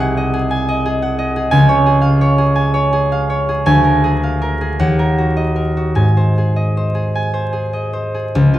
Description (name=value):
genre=classical, solo harp piece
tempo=48-60 BPM (dotted quarters)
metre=6/8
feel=rubato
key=unclear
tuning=A4 = 444 Hz
part: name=concert harp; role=solo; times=0.0-8.6 s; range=C2 to Ab5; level=-13 LUFS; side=equal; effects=none
room=moderate recital hall reverb, RT60 1.4 s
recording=dark, warm production, vinyl crackle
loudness=-13 LUFS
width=side -14 dB against mid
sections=0.0-8.4 A section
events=none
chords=0.0 Ab7/C; 1.5 Db; 3.7 Bb7/D; 4.8 Ebm; 6.0 Ab